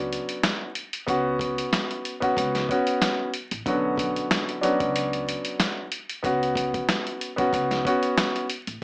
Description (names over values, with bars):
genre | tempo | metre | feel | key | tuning
hip hop, boom-bap hip-hop | 93 BPM | 4/4 | swing 54% on 16ths | unclear | A4 = 441 Hz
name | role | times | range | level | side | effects
warm grand piano | accompaniment | 0.0-8.5 s | D3 to F#4 | -24 LUFS | equal | cassette tape
upright bass | bass | 0.0-8.8 s | A1 to C#2 | -36 LUFS | equal | none
lo-fi sampler-style drum kit | drums | 0.1-8.8 s | hi-hat, kick drum, snare drum | -27 LUFS | equal | none
room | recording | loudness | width
light reverb | vinyl crackle, small speaker sound | -23 LUFS | side -28 dB against mid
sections
0.0-8.8 A section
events
none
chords
0.0 Bmadd9; 1.1 F#sus4; 3.7 Bmadd9; 6.2 F#sus4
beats
0.43 | 1.08 1.72 2.37 3.01 | 3.66 4.30 4.95 5.59 | 6.24 6.88 7.53 8.18